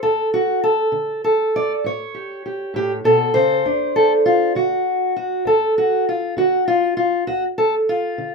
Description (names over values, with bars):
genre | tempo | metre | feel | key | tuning
acoustic country blues, solo or duo | 66 BPM (dotted quarters) | 12/8 | straight | unclear | A4 = 439 Hz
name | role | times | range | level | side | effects
fingerpicked steel-string acoustic guitar | solo | 0.0-8.3 s | D2 to D5 | -16 LUFS | equal | none
room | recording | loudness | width
moderate small room reverb, RT60 0.5 s | minimal, uncompressed stereo recording | -16 LUFS | side -4 dB against mid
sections
0.0-3.6 A section; 3.6-8.3 A section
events
none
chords
0.0 N.C.; 1.8 A7; 3.6 N.C.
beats
| 0.03 0.94 1.84 2.75 | 3.65 4.55 5.46 6.37 | 7.27 8.18